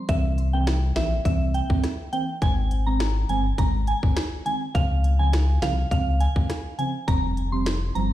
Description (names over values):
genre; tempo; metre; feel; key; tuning
dancehall; 103 BPM; 4/4; straight; unclear; A4 = 440 Hz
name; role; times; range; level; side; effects
soft synth bell; melody; 0.1-8.1 s; E5 to C6; -29 LUFS; right 2 dB; chorus, digital delay
deep mellow chord stab; accompaniment; 0.1-8.1 s; Db3 to C4; -30 LUFS; right 2 dB; chorus, phaser
sub bass with octave; bass; 0.1-8.1 s; F1 to Db2; -23 LUFS; left 1 dB; none
island pop drum kit; drums; 0.1-8.1 s; hi-hat, kick drum, rim click, snare drum; -25 LUFS; equal; overdrive
room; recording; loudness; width
digital ambience; played on a big sound system in a bare room, stone room reverb; -21 LUFS; side -14 dB against mid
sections
0.0-8.1 A section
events
none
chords
0.1 C7; 2.4 Ab; 4.7 Dbmaj7; 7.1 Fsus2